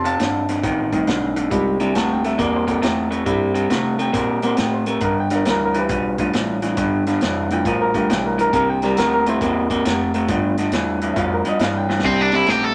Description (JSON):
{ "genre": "electric blues shuffle", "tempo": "137 BPM", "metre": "4/4", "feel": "swing 66% on 8ths", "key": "C mixolydian", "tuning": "A4 = 442 Hz", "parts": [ { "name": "barky reed electric piano", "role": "accompaniment", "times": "0.0-12.7 s", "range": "G3 to A5", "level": "-25 LUFS", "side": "equal", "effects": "overdrive" }, { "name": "electric guitar through a small old amp", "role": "riff", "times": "0.0-12.7 s", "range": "F2 to Bb3", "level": "-22 LUFS", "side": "equal", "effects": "none" }, { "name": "vintage muted fingered electric bass", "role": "bass", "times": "0.0-12.7 s", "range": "F1 to C3", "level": "-34 LUFS", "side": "equal", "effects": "none" }, { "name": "vintage drum kit", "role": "drums", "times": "0.1-12.6 s", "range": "crash cymbal, hi-hat, kick drum, ride cymbal, snare drum", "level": "-29 LUFS", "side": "equal", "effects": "none" }, { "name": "cranked stack guitar", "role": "melody", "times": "12.1-12.7 s", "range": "C4 to A4", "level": "-19 LUFS", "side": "equal", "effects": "overdrive" } ], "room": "moderate studio reverb, RT60 0.9 s", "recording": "none", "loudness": "-19 LUFS", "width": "mono", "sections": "0.0-12.0 A section", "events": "drum fill 11.8", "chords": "0.0 F7; 1.5 C7; 5.0 G7; 8.5 C7; 10.3 G7; 12.0 C7", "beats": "0.20 0.64 1.07 | 1.51 1.95 2.39 2.83 | 3.27 3.71 4.15 4.59 | 5.03 5.46 5.90 6.34 | 6.78 7.22 7.66 8.10 | 8.53 8.97 9.41 9.85 | 10.29 10.73 11.17 11.60 | 12.04 12.48" }